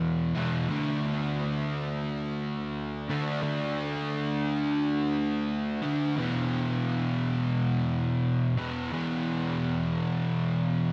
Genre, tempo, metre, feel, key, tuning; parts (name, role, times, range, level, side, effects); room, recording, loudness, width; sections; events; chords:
rock; 88 BPM; 4/4; straight; A4 = 440 Hz
fuzz guitar; solo; 0.0-10.9 s; E2 to D4; -29 LUFS; equal; distortion, subtle chorus, delay
wet huge ambient reverb, RT60 4.9 s; dreamy mix soaked in reverb; -29 LUFS; mono
0.0-10.9 A section
0.0 E5; 0.7 D5; 6.2 E5